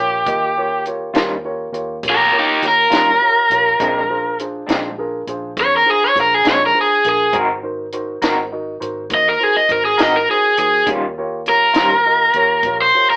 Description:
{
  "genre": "slow blues",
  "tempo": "68 BPM (dotted quarters)",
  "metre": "12/8",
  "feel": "straight",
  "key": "Eb mixolydian",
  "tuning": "A4 = 440 Hz",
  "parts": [
    { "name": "overdriven electric guitar", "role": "melody", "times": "0.0-13.2 s", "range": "Eb4 to Eb5", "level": "-12 LUFS", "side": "equal", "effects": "none" },
    { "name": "dark concert grand piano", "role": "accompaniment", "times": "0.0-13.2 s", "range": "D4 to Eb5", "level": "-24 LUFS", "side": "equal", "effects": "none" },
    { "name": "vintage muted fingered electric bass", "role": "bass", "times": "0.0-12.9 s", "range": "Ab1 to F2", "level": "-37 LUFS", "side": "equal", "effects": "none" },
    { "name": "compact cocktail drum kit", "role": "drums", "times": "0.3-12.8 s", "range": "hi-hat, kick drum, snare drum", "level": "-20 LUFS", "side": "equal", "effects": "none" },
    { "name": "electric guitar through a small old amp", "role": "accompaniment", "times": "1.1-11.9 s", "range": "Bb2 to Bb4", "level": "-20 LUFS", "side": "equal", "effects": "tremolo" }
  ],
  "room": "moderate studio ambience, RT60 0.5 s",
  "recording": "band playing live in one room, AM radio sound",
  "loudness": "-13 LUFS",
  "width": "side -26 dB against mid",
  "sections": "0.0-13.2 A section",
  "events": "overdriven electric guitar solo 0.0-13.2",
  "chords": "0.0 Eb9; 3.8 Bb9; 7.3 Ab9; 10.9 Eb9",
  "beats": "| 0.27 1.15 2.04 2.92 | 3.80 4.69 5.57 6.45 | 7.34 8.22 9.10 9.98 | 10.87 11.75 12.63"
}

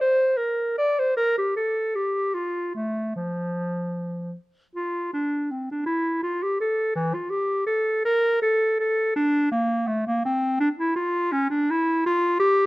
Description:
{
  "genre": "classical, baroque-style fantasia for unaccompanied clarinet",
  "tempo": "72-86 BPM",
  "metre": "3/4",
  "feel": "rubato",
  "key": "F major",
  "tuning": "A4 = 440 Hz",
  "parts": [
    { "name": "warm clarinet", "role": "solo", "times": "0.0-12.7 s", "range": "E3 to D5", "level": "-22 LUFS", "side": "equal", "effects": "none" }
  ],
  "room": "light reverb",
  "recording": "worn, warbling old tape, cassette tape, warbly pitch drift",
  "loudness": "-22 LUFS",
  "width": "side -20 dB against mid",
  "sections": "0.0-4.8 A section; 4.8-12.7 B section",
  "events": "none",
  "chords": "none",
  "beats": "| 0.01 0.77 1.54 | 2.35 3.17 3.96 | 4.76 5.50 6.23 | 6.95 7.68 8.42 | 9.15 9.88 10.61 | 11.33 12.05"
}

